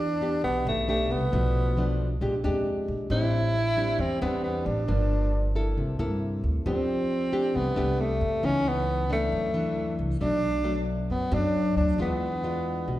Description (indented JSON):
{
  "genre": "bossa nova",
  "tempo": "135 BPM",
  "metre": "4/4",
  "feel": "straight",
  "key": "E minor",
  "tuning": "A4 = 444 Hz",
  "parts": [
    { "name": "breathy tenor saxophone", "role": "melody", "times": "0.0-13.0 s", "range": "A3 to E4", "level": "-27 LUFS", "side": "right 1 dB", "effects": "none" },
    { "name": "nylon-string guitar", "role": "accompaniment", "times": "0.0-13.0 s", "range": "F#2 to A4", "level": "-29 LUFS", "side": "left 2 dB", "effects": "none" },
    { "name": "upright bass", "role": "bass", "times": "0.0-13.0 s", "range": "G1 to G2", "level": "-29 LUFS", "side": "equal", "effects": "none" }
  ],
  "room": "wet recital hall reverb, RT60 1.5 s",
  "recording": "recorded in a church or concert hall",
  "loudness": "-24 LUFS",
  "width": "side -14 dB against mid",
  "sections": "0.0-13.0 A section",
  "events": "none",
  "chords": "0.0 Em7; 1.3 Bm7b5; 2.2 A#6; 3.1 Am7; 4.9 Gm7; 5.8 C13; 6.7 F69; 8.4 C#m9; 9.3 D9; 10.2 Bm7; 12.0 E7b9"
}